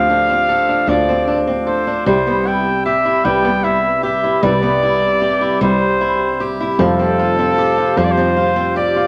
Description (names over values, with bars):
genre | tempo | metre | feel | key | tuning
acoustic folk-pop ballad | 51 BPM (dotted quarters) | 6/8 | straight | C major | A4 = 440 Hz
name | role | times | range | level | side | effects
clear flugelhorn | melody | 0.0-9.1 s | A4 to G5 | -19 LUFS | equal | none
warm upright piano | accompaniment | 0.0-9.1 s | F1 to C5 | -23 LUFS | equal | none
picked swing-style acoustic guitar | arpeggios | 0.0-9.1 s | F3 to A4 | -20 LUFS | equal | none
woody fretless electric bass | bass | 0.0-9.1 s | C2 to F2 | -27 LUFS | equal | none
room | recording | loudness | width
moderate studio ambience, RT60 0.5 s | none | -16 LUFS | mono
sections
0.0-9.1 A section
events
none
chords
0.0 Dm7; 2.1 Cmaj7; 6.8 Fsus2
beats
0.88 | 2.07 3.25 | 4.44 5.62 | 6.80 7.98